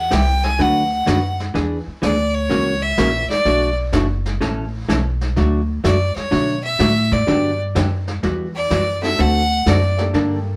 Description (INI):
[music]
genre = country, western swing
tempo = 126 BPM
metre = 4/4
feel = swing 67% on 8ths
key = D major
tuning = A4 = 440 Hz
[part]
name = clear fiddle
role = melody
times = 0.0-10.0 s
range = C#5 to G#5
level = -22 LUFS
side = equal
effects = none
[part]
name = upright bass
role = bass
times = 0.0-10.6 s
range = F#1 to B2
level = -23 LUFS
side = equal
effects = none
[part]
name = vintage hollow-body jazz guitar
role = accompaniment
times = 0.1-10.4 s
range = B2 to B4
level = -23 LUFS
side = equal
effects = none
[part]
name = vintage brush drum kit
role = drums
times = 0.1-10.6 s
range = brushed snare drum, hi-hat, kick drum, snare drum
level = -28 LUFS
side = equal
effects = none
[part]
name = honky-tonk upright piano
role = accompaniment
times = 7.3-10.6 s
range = G3 to A4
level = -29 LUFS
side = equal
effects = none
[sound]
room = moderate studio reverb, RT60 0.6 s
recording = band playing live in one room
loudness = -18 LUFS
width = mono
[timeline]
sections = 0.0-10.6 A section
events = fiddle solo 0.0-10.6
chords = 0.0 Cmaj7; 0.6 D6; 1.5 E7; 2.5 F#7; 3.5 Bm7; 4.4 Aadd9; 5.4 D; 7.3 Gmaj7; 8.2 Emadd9; 9.2 D7